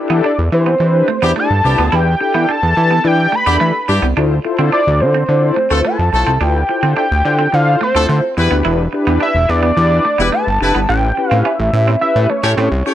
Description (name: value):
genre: funk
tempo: 107 BPM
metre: 4/4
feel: straight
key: D dorian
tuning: A4 = 442 Hz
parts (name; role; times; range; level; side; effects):
- mellow synth brass; accompaniment; 0.0-12.9 s; C#4 to D5; -20 LUFS; left 4 dB; chorus
- electric guitar at the edge of break-up; riff; 0.1-12.9 s; A3 to E4; -22 LUFS; right 8 dB; lush chorus
- fat analog bass; bass; 0.1-12.8 s; E1 to E3; -15 LUFS; equal; none
- fat analog lead; melody; 0.3-12.9 s; C5 to B5; -16 LUFS; equal; chorus, slapback echo
- warm horn section; second line; 1.2-12.9 s; A3 to C#5; -20 LUFS; left 1 dB; none
room: little or no reverb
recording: none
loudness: -12 LUFS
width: side -12 dB against mid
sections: 0.0-12.9 A section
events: none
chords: 0.0 Em7; 4.2 Dm9; 8.4 Em7; 10.9 A7